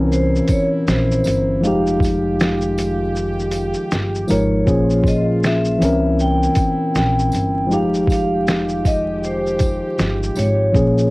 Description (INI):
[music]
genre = lo-fi hip hop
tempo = 79 BPM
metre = 4/4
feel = swing 60% on 16ths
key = F minor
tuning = A4 = 440 Hz
[part]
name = vibraphone with medium hard mallets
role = melody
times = 0.0-11.1 s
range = Bb4 to G5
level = -22 LUFS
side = equal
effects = cassette tape
[part]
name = barky tine electric piano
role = accompaniment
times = 0.0-11.1 s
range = E3 to Bb4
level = -19 LUFS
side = left 1 dB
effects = cassette tape
[part]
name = clear brass ensemble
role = sustained chords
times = 0.0-11.1 s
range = Bb2 to G4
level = -28 LUFS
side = right 1 dB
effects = none
[part]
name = upright bass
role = bass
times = 0.0-11.1 s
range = F1 to C2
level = -22 LUFS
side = equal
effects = none
[part]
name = lo-fi sampler-style drum kit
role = drums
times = 0.1-11.1 s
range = finger snaps, hi-hat, kick drum, shaker, snare drum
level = -20 LUFS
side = equal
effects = cassette tape
[part]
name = tambourine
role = percussion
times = 0.5-10.6 s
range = none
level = -39 LUFS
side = right 3 dB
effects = none
[sound]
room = light reverb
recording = home recording on cassette, vinyl crackle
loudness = -15 LUFS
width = side -22 dB against mid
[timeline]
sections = 0.0-4.7 A section; 4.7-11.1 B section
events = kick muted 3.1-4.7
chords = 0.0 C7b9; 1.6 Fm9; 4.7 Bbm7; 5.8 C7b9; 7.7 Fm9